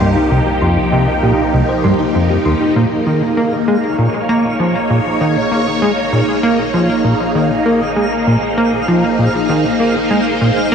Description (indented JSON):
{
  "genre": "ambient, sequencer-driven space music",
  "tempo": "98 BPM",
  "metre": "4/4",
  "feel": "straight",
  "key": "Bb minor",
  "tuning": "A4 = 438 Hz",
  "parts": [
    { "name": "phased string machine", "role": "sustained chords", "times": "0.0-10.7 s", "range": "F3 to Db5", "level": "-16 LUFS", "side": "equal", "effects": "ensemble chorus, phaser" },
    { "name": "thumb-piano-like synth pluck", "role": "arpeggios", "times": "0.0-2.8 s", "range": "Eb4 to C6", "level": "-23 LUFS", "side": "equal", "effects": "chorus, auto-pan, ping-pong delay" },
    { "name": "plucky analog bass", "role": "riff", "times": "0.0-10.7 s", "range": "C2 to Bb3", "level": "-15 LUFS", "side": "equal", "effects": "lush chorus, ping-pong delay" },
    { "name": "round analog bass", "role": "bass", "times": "0.0-10.7 s", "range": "Bb1 to C2", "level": "-29 LUFS", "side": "equal", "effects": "none" },
    { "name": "twinkling granular texture", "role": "texture", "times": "3.1-10.7 s", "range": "F5", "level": "-26 LUFS", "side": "right 2 dB", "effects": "built-in reverb" }
  ],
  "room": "wet cathedral reverb, RT60 6.3 s",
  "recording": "in a vast, echoing space",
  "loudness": "-12 LUFS",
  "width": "side -7 dB against mid",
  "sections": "0.0-2.8 A section; 2.8-10.7 B section",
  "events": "fade-in on analog synth bass 2.8-10.7",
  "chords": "0.0 Cm; 2.8 Bbm",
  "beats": "| 0.31 0.92 1.54 2.15 | 2.76 3.37 3.98 4.60 | 5.21 5.82 6.43 7.05 | 7.66 8.27 8.88 9.49 | 10.11 10.72"
}